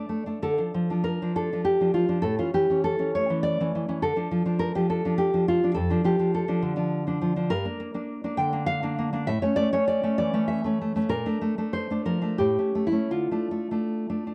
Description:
romantic piece for solo classical guitar; 78-107 BPM; 3/4; rubato; D minor; A4 = 440 Hz
nylon-string guitar; solo; 0.0-14.3 s; F2 to G5; -26 LUFS; equal
little or no reverb; dry, close 1970s-style studio recording; -26 LUFS; mono
0.4-14.3 A section
0.4 Dm; 2.2 A; 4.0 Dm; 5.8 Dm/F; 7.5 Gm; 9.3 A; 11.1 Bbmaj7; 12.4 A7; 13.1 Dm
| 0.44 1.05 1.65 | 2.24 2.84 3.45 | 4.04 4.61 5.21 | 5.78 6.36 6.92 | 7.50 8.08 8.68 | 9.28 9.88 10.49 | 11.10 11.73 12.39 | 13.12 13.87

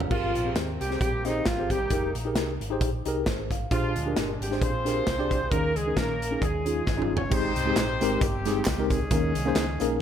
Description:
uptempo gospel; 133 BPM; 4/4; swing 55% on 8ths; Ab major; A4 = 441 Hz
hollow-body short-scale fingered electric bass; bass; 0.0-10.0 s; F1 to Eb2; -32 LUFS; equal
modern studio drum kit; drums; 0.0-9.9 s; crash cymbal, hi-hat, kick drum, snare drum, toms; -28 LUFS; equal
warm alto saxophone; melody; 0.1-7.1 s; Eb4 to C5; -31 LUFS; right 4 dB
warm horn section; melody; 0.1-10.0 s; Eb3 to Db5; -32 LUFS; left 3 dB
tine electric piano; accompaniment; 0.1-10.0 s; Ab2 to F5; -29 LUFS; left 2 dB; overdrive, fast stereo tremolo
tambourine and handclaps; percussion; 7.3-9.9 s; -40 LUFS; right 4 dB
light reverb, studio reverb; -24 LUFS; side -9 dB against mid
0.0-7.3 A section; 7.3-10.0 B section
drum fill 6.9-7.3
0.1 Abmaj9; 1.9 Fm11; 3.7 Bb13; 5.5 Eb7sus4; 6.4 Eb9sus4; 7.3 Abmaj7; 9.1 Eb7sus4
| 0.10 0.56 1.01 1.46 | 1.91 2.36 2.81 3.26 | 3.71 4.16 4.61 5.06 | 5.51 5.97 6.42 6.87 | 7.32 7.76 8.21 8.66 | 9.11 9.56 10.01

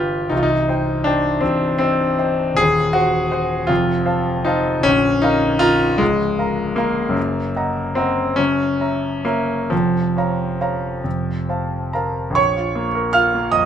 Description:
classical, romantic character piece for solo piano; 43-55 BPM (dotted quarters); 6/8; rubato; Bb minor; A4 = 440 Hz
clear concert grand piano; solo; 0.0-13.7 s; Bb0 to F6; -16 LUFS; equal
little or no reverb; close, detailed microphones; -16 LUFS; side -9 dB against mid
0.0-12.4 A section; 12.4-13.7 B section
0.3 Cm; 2.6 Cdim/Eb; 3.7 F; 4.9 Bb5; 6.0 Bbm/Db; 7.2 Ebm/Gb; 8.4 Gb7; 9.7 Bbm/F; 11.0 F; 12.4 Bbm
| 0.32 1.46 | 2.59 3.70 | 4.85 6.00 | 7.16 8.38 | 9.71 11.05 | 12.37 13.53

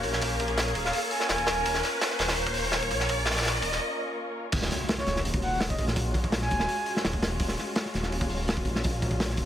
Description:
drum and bass, jungle; 167 BPM; 4/4; straight; Eb minor; A4 = 441 Hz
dark studio string section; sustained chords; 0.0-9.5 s; Ab3 to Bb4; -34 LUFS; left 2 dB
detuned saw bass; bass; 0.0-9.5 s; Eb1 to Bb1; -32 LUFS; equal
crunchy breakbeat drum kit; drums; 0.0-9.5 s; crash cymbal, hi-hat, kick drum, snare drum; -28 LUFS; equal; high-pass filter on kick, high-pass filter on hats, high-pass filter on cymbals, high-pass filter on snare, high-pass filter on room
riser and impact; sound effects; 0.0-6.0 s; -33 LUFS; equal
wind-like tuned noise texture; texture; 0.0-3.8 s; Db5 to Db6; -40 LUFS; left 1 dB; built-in reverb
breathy flute-like synth lead; melody; 0.8-1.8, 5.0-6.9 s; Db5 to Ab5; -34 LUFS; right 1 dB; chorus, dub echo
light reverb, studio reverb; -25 LUFS; side -10 dB against mid
0.0-4.5 A section; 4.5-9.5 B section
build-up 0.0-4.5; riser 0.0-3.8; break 3.8-4.5; drop 4.5-9.5; impact 4.5-6.0
0.0 Bbm/Eb; 4.5 Ebm11
| 0.22 0.58 0.94 1.30 | 1.66 2.02 2.38 2.73 | 3.09 3.45 3.81 4.17 | 4.53 4.89 5.25 5.61 | 5.97 6.33 6.69 7.04 | 7.41 7.76 8.12 8.48 | 8.84 9.20

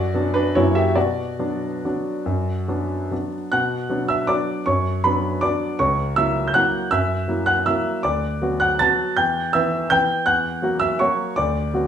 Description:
classical, piano waltz; 134-170 BPM; 3/4; rubato; B minor; A4 = 440 Hz
clear grand piano; solo; 0.0-11.9 s; C#2 to A6; -18 LUFS; equal
wet large studio reverb, RT60 0.8 s; heard from further back in the room; -18 LUFS; side -8 dB against mid
0.0-3.5 A section; 3.5-11.9 B section
0.0 Bm/F#; 0.6 F#7; 1.0 Bm; 5.8 F#7/C#; 8.0 Bm/D; 9.2 Em; 10.3 F#7/E; 11.4 Bm/D
0.14 0.55 | 0.96 1.39 1.84 | 2.26 2.68 3.11 | 3.52 3.89 4.28 | 4.66 5.03 5.42 | 5.79 6.16 6.54 | 6.91 7.27 7.66 | 8.04 8.41 8.80 | 9.17 9.53 9.90 | 10.27 10.63 11.00 | 11.36 11.73

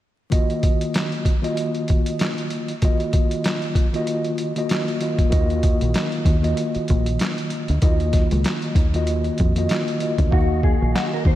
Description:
hip hop, boom-bap hip-hop; 96 BPM; 4/4; swing 58% on 16ths; Eb minor; A4 = 440 Hz
mellow tine electric piano; accompaniment; 0.3-11.3 s; Eb3 to F5; -23 LUFS; equal; medium stereo tremolo, cassette tape, high-pass filter, low-pass filter
boom bap sampler-style drum kit; drums; 0.3-11.4 s; handclaps, hi-hat, kick drum, snare drum; -21 LUFS; equal
deep dub fingered electric bass; bass; 5.3-11.4 s; Bb1 to F2; -21 LUFS; equal
mellow electric guitar; melody; 10.3-11.4 s; Gb4 to C5; -26 LUFS; left 2 dB; ensemble chorus, high-pass filter, low-pass filter, diffuse ambient delay
moderate lush hall reverb, RT60 2.9 s; dreamy mix soaked in reverb, vinyl crackle; -18 LUFS; side -14 dB against mid
0.3-10.3 A section; 10.3-11.4 B section
hi-hats muted 10.3-11.4
0.3 Ebmadd9
| 0.32 0.95 1.57 2.20 | 2.82 3.45 4.07 4.70 | 5.32 5.95 6.57 7.20 | 7.82 8.45 9.07 9.70 | 10.32 10.95

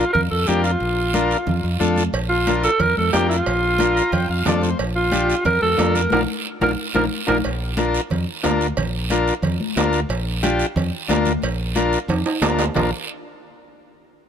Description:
latin, cumbia; 181 BPM; 4/4; straight; Bb major; A4 = 443 Hz
growling alto saxophone; melody; 0.0-7.4 s; F4 to Bb4; -20 LUFS; right 1 dB
combo organ; accompaniment; 0.0-12.9 s; D4 to Bb5; -23 LUFS; left 3 dB
fingered electric bass; bass; 0.0-12.9 s; Bb1 to F2; -23 LUFS; equal
congas; percussion; 0.1-12.8 s; -27 LUFS; left 2 dB
guiro; percussion; 0.1-12.8 s; -31 LUFS; right 7 dB
cowbell and timbales; percussion; 2.1-12.8 s; -26 LUFS; right 5 dB
light reverb; -17 LUFS; side -8 dB against mid
0.0-7.4 A section; 7.4-12.8 B section; 12.8-14.1 C section
transistor combo organ fill 3.8-4.8; band accent 6.1-7.4; drum fill 6.6-7.4, 12.1-12.8
0.0 Bb
0.14 0.48 | 0.81 1.14 1.47 1.80 | 2.14 2.47 2.80 3.13 | 3.46 3.80 4.13 4.46 | 4.79 5.12 5.46 5.79 | 6.12 6.45 6.78 7.12 | 7.45 7.78 8.11 8.44 | 8.78 9.11 9.44 9.77 | 10.10 10.43 10.76 11.10 | 11.43 11.76 12.09 12.42 | 12.75

